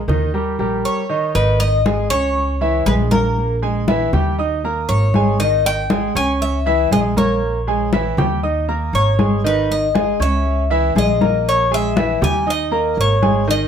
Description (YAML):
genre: latin, Cuban son and guajira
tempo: 119 BPM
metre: 4/4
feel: straight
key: unclear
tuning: A4 = 436 Hz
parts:
  - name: Cuban tres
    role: melody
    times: 0.0-13.7 s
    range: A#4 to G#5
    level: -20 LUFS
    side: left 2 dB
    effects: none
  - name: clear grand piano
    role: arpeggios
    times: 0.1-13.7 s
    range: D#3 to D#6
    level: -20 LUFS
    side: right 2 dB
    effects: none
  - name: upright bass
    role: bass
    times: 0.1-13.7 s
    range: G#1 to D#2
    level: -20 LUFS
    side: equal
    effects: none
  - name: congas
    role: percussion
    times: 0.1-13.7 s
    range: none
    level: -21 LUFS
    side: left 2 dB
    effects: none
room: light reverb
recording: none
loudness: -15 LUFS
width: side -8 dB against mid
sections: 0.0-1.4 A section; 1.4-13.7 B section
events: none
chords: 0.3 D#7; 1.4 G#5; 2.4 C#m; 3.4 D#add11/A#; 4.4 D#5; 5.4 G#5; 6.4 C#m; 7.4 A#m7b5; 8.4 D#5; 9.4 G#5; 10.5 C#m; 11.5 A#m7b5; 12.5 D#5